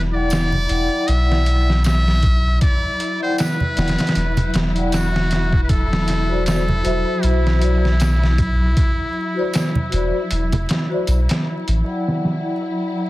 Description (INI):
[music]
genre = trip hop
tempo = 78 BPM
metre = 4/4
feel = swing 57% on 16ths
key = E minor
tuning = A4 = 435 Hz
[part]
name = trumpet with metal mute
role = melody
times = 0.0-11.1 s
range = E4 to E5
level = -25 LUFS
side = equal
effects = vintage 12-bit sampler grit, dub echo
[part]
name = warm studio string section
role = sustained chords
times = 0.0-13.1 s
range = F#3 to E4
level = -27 LUFS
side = left 1 dB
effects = vintage 12-bit sampler grit
[part]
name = soft dub sub bass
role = bass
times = 0.0-11.8 s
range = E1 to B1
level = -18 LUFS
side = equal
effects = none
[part]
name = vibraphone with soft mallets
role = accompaniment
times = 0.1-13.1 s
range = E4 to G5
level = -24 LUFS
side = left 2 dB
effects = tremolo
[part]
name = trip hop sampler-style drum kit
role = drums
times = 0.3-13.1 s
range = hi-hat, kick drum, snare drum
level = -20 LUFS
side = equal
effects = overdrive, low-pass filter on kick, studio reverb, low-pass filter on hats, low-pass filter on snare
[part]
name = tambourine and congas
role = percussion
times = 0.3-11.3 s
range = none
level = -24 LUFS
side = right 1 dB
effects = none
[sound]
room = studio ambience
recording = dense, heavily limited modern master, vinyl crackle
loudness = -16 LUFS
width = side -17 dB against mid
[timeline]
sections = 0.0-11.8 A section; 11.8-13.1 B section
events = none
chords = 0.0 Em9; 5.7 D9/E; 11.8 Em9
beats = 0.31 1.08 1.85 | 2.62 3.38 4.15 4.92 | 5.69 6.46 7.23 8.00 | 8.77 9.54 10.31 11.08 | 11.85 12.62